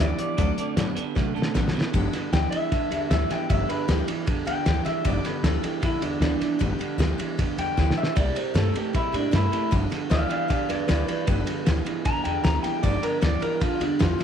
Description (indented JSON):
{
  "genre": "rockabilly",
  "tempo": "154 BPM",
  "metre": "4/4",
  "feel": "straight",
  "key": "G mixolydian",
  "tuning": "A4 = 440 Hz",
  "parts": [
    { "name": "electric guitar through a small old amp", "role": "melody", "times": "0.0-14.2 s", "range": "D4 to Bb5", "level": "-28 LUFS", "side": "left 1 dB", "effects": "tape echo" },
    { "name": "picked steel-string acoustic guitar", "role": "accompaniment", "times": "0.0-14.2 s", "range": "G2 to A4", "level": "-32 LUFS", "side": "left 12 dB", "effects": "none" },
    { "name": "electric guitar through a small old amp", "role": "riff", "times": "0.0-14.2 s", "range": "G2 to B3", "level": "-30 LUFS", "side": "right 12 dB", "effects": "none" },
    { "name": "upright bass", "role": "bass", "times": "0.0-14.2 s", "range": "G1 to C3", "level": "-27 LUFS", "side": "equal", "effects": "none" },
    { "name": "cloth-damped thuddy drum kit", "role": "drums", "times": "0.2-14.2 s", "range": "hi-hat, kick drum, ride cymbal, snare drum", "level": "-27 LUFS", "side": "equal", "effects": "none" }
  ],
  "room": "light reverb, studio reverb",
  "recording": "1960s-style stereo with parts hard left and right",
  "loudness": "-22 LUFS",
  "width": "side -8 dB against mid",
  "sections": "0.0-1.9 A section; 1.9-14.2 B section",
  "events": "drum fill 1.2-1.9, 7.8-8.2; clean electric guitar solo 1.9-14.2",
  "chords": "0.4 D7; 1.9 G7; 8.2 C7; 9.7 G7"
}